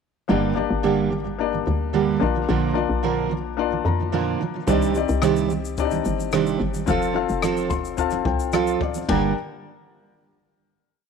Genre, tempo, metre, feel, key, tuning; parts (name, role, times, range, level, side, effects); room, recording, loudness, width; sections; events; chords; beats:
acoustic pop; 109 BPM; 4/4; straight; G minor; A4 = 445 Hz
felt-muted upright piano; accompaniment; 0.3-9.3 s; Bb3 to C6; -25 LUFS; left 12 dB
fingerpicked steel-string acoustic guitar; accompaniment; 0.3-9.3 s; G2 to Bb4; -23 LUFS; right 9 dB
hollow knocking FM bass; bass; 0.3-9.3 s; F1 to F2; -27 LUFS; left 1 dB
compact cocktail drum kit; drums; 4.7-9.2 s; kick drum, ride cymbal, rim click, shaker; -29 LUFS; left 4 dB
light reverb, studio reverb; 1960s-style stereo with parts hard left and right; -20 LUFS; side -6 dB against mid
0.3-9.1 verse; 9.1-11.1 final chord
felt piano fill 3.6-4.7, 7.4-9.1
0.3 Gm; 2.2 Bb; 4.7 Cmadd9; 6.9 F; 9.1 Gm
| 0.30 0.84 1.39 1.94 | 2.49 3.04 3.58 4.13 | 4.68 5.23 5.78 6.33 | 6.88 7.43 7.98 8.53 | 9.08